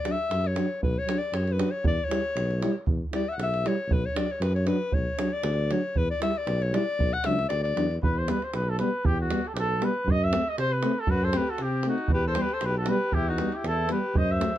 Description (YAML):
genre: balkan folk, Balkan brass band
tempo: 117 BPM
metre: 2/4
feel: swing 54% on 16ths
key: B minor, E harmonic minor from 8.0 s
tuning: A4 = 440 Hz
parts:
  - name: clear alto saxophone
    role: second line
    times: 0.0-8.0, 11.1-14.6 s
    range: C4 to F#5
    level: -30 LUFS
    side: left 4 dB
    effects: none
  - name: dark euphonium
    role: accompaniment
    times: 0.1-14.5 s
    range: A3 to E4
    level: -31 LUFS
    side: left 6 dB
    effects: none
  - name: dark trombone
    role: accompaniment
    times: 0.1-14.5 s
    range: F#3 to A3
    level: -31 LUFS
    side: right 5 dB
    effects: none
  - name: davul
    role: percussion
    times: 0.1-14.6 s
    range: none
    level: -30 LUFS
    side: right 2 dB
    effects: none
  - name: mellow tuba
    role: bass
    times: 0.3-14.4 s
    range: B1 to C3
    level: -28 LUFS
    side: equal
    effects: none
  - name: warm flugelhorn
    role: melody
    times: 8.0-14.6 s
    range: F#4 to E5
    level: -28 LUFS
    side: equal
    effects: none
room: little or no reverb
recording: close, detailed microphones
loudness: -24 LUFS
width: side -12 dB against mid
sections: 0.0-8.0 A section; 8.0-14.6 B section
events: alto saxophone solo 0.0-8.0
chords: 0.0 Bm; 1.9 Em; 3.9 Bm; 6.0 Em; 7.0 Bm; 8.0 Em; 10.1 F#dim; 12.1 Em